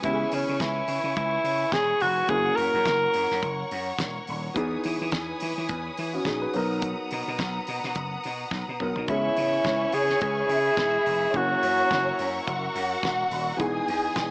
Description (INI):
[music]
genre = disco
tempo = 106 BPM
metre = 4/4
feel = swing 56% on 16ths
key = C# dorian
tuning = A4 = 440 Hz
[part]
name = breathy alto saxophone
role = melody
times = 0.0-3.7, 9.1-12.5 s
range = C#4 to A#4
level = -23 LUFS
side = equal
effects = analog delay
[part]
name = dark baby grand piano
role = accompaniment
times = 0.0-14.3 s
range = E3 to B4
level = -32 LUFS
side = equal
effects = none
[part]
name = bright studio string section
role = sustained chords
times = 0.0-14.3 s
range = B3 to D#6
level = -34 LUFS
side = left 1 dB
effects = none
[part]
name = vintage slap bass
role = bass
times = 0.0-14.3 s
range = D#1 to E3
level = -33 LUFS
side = equal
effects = none
[part]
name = damped 70s drum kit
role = drums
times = 0.0-14.3 s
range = hi-hat, kick drum, snare drum, toms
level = -34 LUFS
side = equal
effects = none
[part]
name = warm studio string section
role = second line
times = 9.1-14.3 s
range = C#4 to G#5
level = -29 LUFS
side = equal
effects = none
[sound]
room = light reverb, studio reverb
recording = small speaker sound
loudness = -23 LUFS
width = side -28 dB against mid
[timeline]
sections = 0.0-9.1 A section; 9.1-14.3 B section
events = drum fill 8.5-9.1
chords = 0.0 C#m7; 2.3 F#7; 4.6 Emaj7; 6.5 Bmaj7; 9.1 C#m7; 11.3 F#7; 13.6 Emaj7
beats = | 0.04 0.60 1.17 1.73 | 2.30 2.86 3.43 3.99 | 4.56 5.12 5.69 6.25 | 6.82 7.38 7.95 8.52 | 9.08 9.65 10.21 10.78 | 11.34 11.90 12.47 13.03 | 13.60 14.16